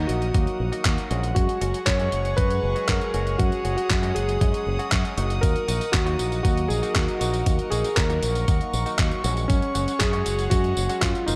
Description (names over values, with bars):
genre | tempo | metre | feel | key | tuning
italo disco | 118 BPM | 4/4 | straight | Eb minor | A4 = 440 Hz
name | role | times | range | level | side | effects
warm electric grand piano | melody | 0.0-11.4 s | Db4 to Db5 | -30 LUFS | equal | tape echo
rich chamber string section | sustained chords | 0.0-11.4 s | Ab4 to Eb6 | -36 LUFS | equal | none
direct-recorded clean electric guitar | stabs | 0.0-11.4 s | F3 to Gb4 | -34 LUFS | equal | analog chorus
fingered electric bass with an envelope filter | bass | 0.0-11.4 s | Gb1 to Gb2 | -29 LUFS | equal | none
dusty soul sampler-style drum kit | drums | 0.1-11.4 s | handclaps, hi-hat, tambourine | -32 LUFS | equal | overdrive, studio reverb
electronic kick drum | drums | 0.3-11.1 s | none | -26 LUFS | equal | overdrive, studio reverb
room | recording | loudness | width
moderate lush hall reverb, RT60 1.7 s | dark, warm production | -23 LUFS | mono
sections
0.0-11.4 A section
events
none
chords
0.0 Ebm; 1.4 Gbsus2; 5.4 Ebm; 9.5 Gbsus2